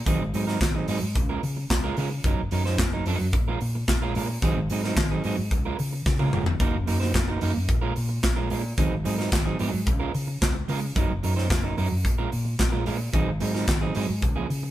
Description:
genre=disco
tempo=110 BPM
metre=4/4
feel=straight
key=unclear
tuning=A4 = 440 Hz
part: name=electric guitar at the edge of break-up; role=accompaniment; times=0.1-14.7 s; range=F3 to C5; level=-29 LUFS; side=right 5 dB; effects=none
part: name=fingered electric bass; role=bass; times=0.1-14.7 s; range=F1 to Db3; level=-27 LUFS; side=equal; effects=none
part: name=modern studio drum kit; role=drums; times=0.1-14.6 s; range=handclaps, hi-hat, kick drum, snare drum, toms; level=-26 LUFS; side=equal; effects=none
room=light reverb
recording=band playing live in one room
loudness=-23 LUFS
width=side -14 dB against mid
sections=0.0-14.7 A section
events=drum fill 6.1-6.6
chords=0.1 Ab7; 1.2 Db6; 2.2 Gb6; 3.3 Bbm7; 4.4 Ab7; 5.5 Db6; 6.6 Gb6; 7.7 Bbm7; 8.8 Ab7; 9.9 Db6; 11.0 Gb6; 12.0 Bbm7; 13.1 Ab7

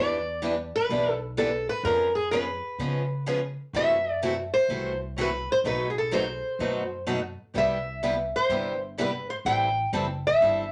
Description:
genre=acoustic string swing (jazz manouche)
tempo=126 BPM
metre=4/4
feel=swing 65% on 8ths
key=E minor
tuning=A4 = 440 Hz
part: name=picked old ladder-braced acoustic guitar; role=melody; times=0.0-10.7 s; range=G#4 to G5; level=-28 LUFS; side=equal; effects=none
part: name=picked steel-string acoustic guitar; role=accompaniment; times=0.0-10.6 s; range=B2 to A4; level=-33 LUFS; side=equal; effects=none
part: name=picked steel-string acoustic guitar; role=accompaniment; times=0.0-10.6 s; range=B2 to B4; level=-37 LUFS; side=equal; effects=none
part: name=upright bass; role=bass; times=0.0-10.7 s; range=F#1 to C#3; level=-38 LUFS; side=equal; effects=none
room=wet studio ambience, RT60 0.5 s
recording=none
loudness=-27 LUFS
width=mono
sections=0.0-10.7 A section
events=none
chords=0.0 Em7; 1.8 C#7/E#; 3.7 F#m7b5; 5.6 B7b9; 7.5 Cmaj7; 9.5 Am7

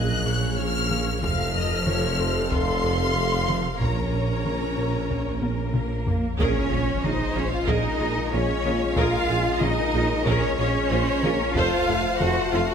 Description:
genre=cinematic, hybrid orchestral and electronic film score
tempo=93 BPM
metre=4/4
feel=straight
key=Bb minor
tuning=A4 = 440 Hz
part: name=warm symphonic violin section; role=melody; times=0.0-12.7 s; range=Ab4 to Gb6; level=-30 LUFS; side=left 4 dB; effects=none
part: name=clear symphonic violin section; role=second line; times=0.0-12.7 s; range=Bb4 to Gb5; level=-30 LUFS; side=left 1 dB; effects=none
part: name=warm symphonic viola section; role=accompaniment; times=0.0-12.6 s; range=C3 to C5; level=-31 LUFS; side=right 1 dB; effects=none
part: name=mellow French horn section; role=sustained chords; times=0.0-12.7 s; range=C3 to Bb4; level=-31 LUFS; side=left 5 dB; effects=none
part: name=harp-like synth pluck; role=arpeggios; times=0.0-12.7 s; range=F3 to Bb4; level=-36 LUFS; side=left 2 dB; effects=none
part: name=round analog bass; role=riff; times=0.0-12.7 s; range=F2 to Bb3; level=-31 LUFS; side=right 2 dB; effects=none
part: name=mellow tuba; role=bass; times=0.0-12.7 s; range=F1 to Bb1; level=-32 LUFS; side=right 5 dB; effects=none
part: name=punchy sub bass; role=bass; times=0.0-12.7 s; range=F1 to Bb1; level=-33 LUFS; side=left 1 dB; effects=none
part: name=rich symphonic double bass section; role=bass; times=0.0-12.6 s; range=F1 to F2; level=-32 LUFS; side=right 3 dB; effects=none
part: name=warm symphonic cello section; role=bass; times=0.0-12.7 s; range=Bb2 to Gb4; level=-29 LUFS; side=right 2 dB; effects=none
part: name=taiko ensemble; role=drums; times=0.9-12.5 s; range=none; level=-31 LUFS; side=left 1 dB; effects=none
part: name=impact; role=sound effects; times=6.4-9.0 s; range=none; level=-34 LUFS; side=left 1 dB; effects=none
room=moderate concert hall reverb, RT60 1.8 s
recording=none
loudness=-21 LUFS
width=side -7 dB against mid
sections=0.0-6.4 A section; 6.4-12.7 B section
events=drum fill 5.4-6.4; impact 6.4-9.0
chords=0.0 Bbm7; 1.2 F; 3.8 Bbm; 6.4 Bbm7; 11.6 F

